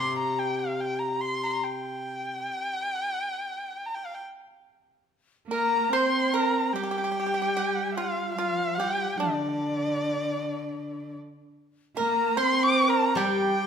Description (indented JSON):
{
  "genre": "chinese traditional, Chinese chamber ensemble",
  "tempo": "66-76 BPM",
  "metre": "4/4",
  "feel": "rubato",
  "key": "G yu mode",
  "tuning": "A4 = 440 Hz",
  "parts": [
    { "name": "warm erhu", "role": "melody", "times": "0.0-13.7 s", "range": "D5 to D6", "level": "-28 LUFS", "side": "left 1 dB", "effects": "none" },
    { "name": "steel-string zither", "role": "accompaniment", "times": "0.0-2.5, 13.2-13.7 s", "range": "C3 to G3", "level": "-31 LUFS", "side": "left 1 dB", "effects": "none" },
    { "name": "bright xiao", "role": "second line", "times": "5.5-13.7 s", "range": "D4 to C5", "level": "-31 LUFS", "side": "left 5 dB", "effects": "none" },
    { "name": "pipa", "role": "second line", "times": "5.5-13.7 s", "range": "D4 to C5", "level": "-31 LUFS", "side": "right 4 dB", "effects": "none" },
    { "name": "rich cello", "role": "second line", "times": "5.5-13.7 s", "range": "D3 to C4", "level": "-31 LUFS", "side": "right 6 dB", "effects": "none" }
  ],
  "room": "wet recital hall reverb, RT60 1.5 s",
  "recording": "minimal, uncompressed stereo recording",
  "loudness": "-24 LUFS",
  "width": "side -7 dB against mid",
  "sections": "0.0-5.1 A section; 5.1-13.7 B section",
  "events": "none",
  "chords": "none"
}